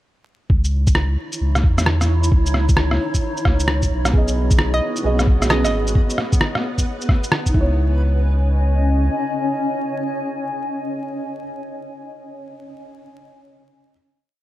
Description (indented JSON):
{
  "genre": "future garage",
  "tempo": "132 BPM",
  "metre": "4/4",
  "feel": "swing 64% on 16ths",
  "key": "C# minor",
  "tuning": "A4 = 440 Hz",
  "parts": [
    { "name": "granular cloud pad", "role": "sustained chords", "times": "1.1-11.4 s", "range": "C#4 to G#5", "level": "-26 LUFS", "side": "left 1 dB", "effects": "built-in reverb, sidechain pumping" },
    { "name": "warm sub bass", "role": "bass", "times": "0.5-9.1 s", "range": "G#1 to E2", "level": "-18 LUFS", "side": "equal", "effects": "none" },
    { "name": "electronic kick drum", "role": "drums", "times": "0.5-7.7 s", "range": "none", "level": "-17 LUFS", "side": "equal", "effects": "small room reverb" },
    { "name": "electronic shaker and rim click", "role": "drums", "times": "0.6-7.5 s", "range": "none", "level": "-22 LUFS", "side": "equal", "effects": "small room reverb" },
    { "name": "felt-muted upright piano", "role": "accompaniment", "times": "4.1-13.9 s", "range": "B3 to D#5", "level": "-26 LUFS", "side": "right 2 dB", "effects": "vintage 12-bit sampler grit, sidechain pumping, dub echo" },
    { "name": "backwards swelling texture", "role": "texture", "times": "4.9-7.8 s", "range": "B3 to B4", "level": "-32 LUFS", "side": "equal", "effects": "built-in reverb" },
    { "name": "hollow square pluck", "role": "melody", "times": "4.7-5.7 s", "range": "D#5", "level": "-27 LUFS", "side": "right 2 dB", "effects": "chorus, tape echo" }
  ],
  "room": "light reverb, digital ambience",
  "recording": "dark, warm production, vinyl crackle",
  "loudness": "-16 LUFS",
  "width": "side -15 dB against mid",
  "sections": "0.5-7.8 groove; 7.8-11.4 final hit",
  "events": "none",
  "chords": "0.5 C#madd9; 4.1 B6; 7.5 C#madd9"
}